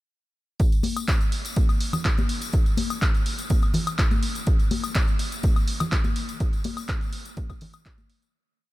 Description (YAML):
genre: house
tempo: 124 BPM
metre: 4/4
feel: straight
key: none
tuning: none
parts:
  - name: electronic kick drum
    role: drums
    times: 0.6-8.0 s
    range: none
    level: -22 LUFS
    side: equal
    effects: none
  - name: punchy analog drum machine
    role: drums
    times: 0.6-8.3 s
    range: handclaps, hi-hat, woodblock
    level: -30 LUFS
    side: left 1 dB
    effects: sidechain pumping on hats, sidechain pumping on perc
  - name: tambourine and congas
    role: percussion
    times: 0.6-8.3 s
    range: none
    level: -31 LUFS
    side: left 3 dB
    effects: sidechain pumping on perc
room: little or no reverb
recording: none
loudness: -21 LUFS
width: side -17 dB against mid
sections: 0.6-8.3 drop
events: drop 0.6-8.3; fade-out 5.8-8.3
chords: none